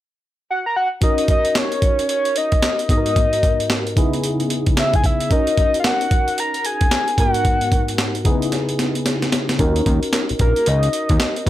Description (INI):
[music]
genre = R&B, new jack swing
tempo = 112 BPM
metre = 4/4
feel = swing 62% on 16ths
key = unclear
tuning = A4 = 440 Hz
[part]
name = soft octave-layered synth lead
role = melody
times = 0.5-11.5 s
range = A#4 to A#5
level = -20 LUFS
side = left 1 dB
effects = chorus
[part]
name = tine electric piano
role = accompaniment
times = 1.0-11.5 s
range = G#2 to A#4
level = -23 LUFS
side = left 1 dB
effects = phaser
[part]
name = boom bap sampler-style drum kit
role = drums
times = 1.0-11.5 s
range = handclaps, hi-hat, kick drum, snare drum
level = -19 LUFS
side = equal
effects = overdrive
[part]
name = fat analog bass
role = bass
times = 9.6-11.5 s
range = A#1 to D#2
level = -19 LUFS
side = equal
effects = none
[sound]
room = light reverb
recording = none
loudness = -16 LUFS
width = side -13 dB against mid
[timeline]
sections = 0.0-1.0 A section; 1.0-9.6 B section; 9.6-11.5 C section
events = drum fill 8.5-9.6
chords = 0.0 N.C.; 1.0 D#m7; 2.9 G#m7; 4.0 C#m7; 5.3 D#m7; 7.2 G#m7; 8.3 C#m7; 9.6 D#m7